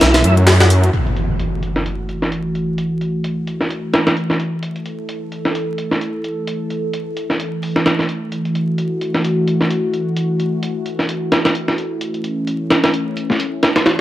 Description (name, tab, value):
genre	breakbeat, breaks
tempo	130 BPM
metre	4/4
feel	swing 57% on 16ths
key	F# minor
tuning	A4 = 439 Hz
part	phased analog pad	sustained chords	0.0-14.0 s	E3 to A4	-21 LUFS	equal	phaser, chorus
part	tonewheel organ	riff	0.0-0.6 s	E4 to F#4	-20 LUFS	equal	chorus vibrato, fast rotary speaker, ping-pong delay
part	detuned saw bass	bass	0.0-0.9 s	B1 to F#2	-11 LUFS	equal	none
part	breakbeat sampler-style drum kit	drums	0.0-14.0 s	hi-hat, snare drum	-17 LUFS	equal	low-pass filter on hats, small room ambience, low-pass filter on kick, low-pass filter on snare
part	garage drum kit	drums	0.0-0.9 s	handclaps, hi-hat	-23 LUFS	equal	small room ambience
part	impact	sound effects	0.9-2.8 s	none	-22 LUFS	equal	none
room	light reverb, digital ambience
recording	vinyl crackle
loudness	-16 LUFS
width	side -14 dB against mid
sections	0.9-14.0 A section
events	band accent 0.5; impact 0.9-2.8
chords	0.0 F#m7